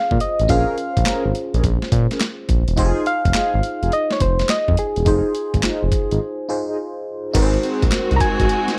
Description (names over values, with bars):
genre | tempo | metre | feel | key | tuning
R&B, new jack swing | 105 BPM | 4/4 | swing 67% on 16ths | Bb minor | A4 = 440 Hz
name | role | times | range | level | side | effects
soft struck synth lead | melody | 0.0-8.8 s | Ab4 to Bb5 | -24 LUFS | equal | chorus, slapback echo
FM electric piano | accompaniment | 0.0-8.8 s | Db4 to C5 | -28 LUFS | equal | chorus, phaser
smooth synth bass | bass | 0.1-8.5 s | E1 to Bb2 | -21 LUFS | equal | none
boom bap sampler-style drum kit | drums | 0.1-8.8 s | crash cymbal, handclaps, hi-hat, kick drum, snare drum | -24 LUFS | equal | overdrive
mellow synth brass | stabs | 0.5-8.5 s | C4 to Bb4 | -28 LUFS | equal | chorus, slapback echo
warm symphonic string section | sustained chords | 7.3-8.8 s | Ab3 to Gb4 | -27 LUFS | equal | none
room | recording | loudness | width
little or no reverb | dry, close 1970s-style studio recording | -19 LUFS | mono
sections
0.0-7.3 A section; 7.3-8.8 B section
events
break 6.2-7.3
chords
0.0 Bbm7; 2.8 Fm7; 7.3 Ab7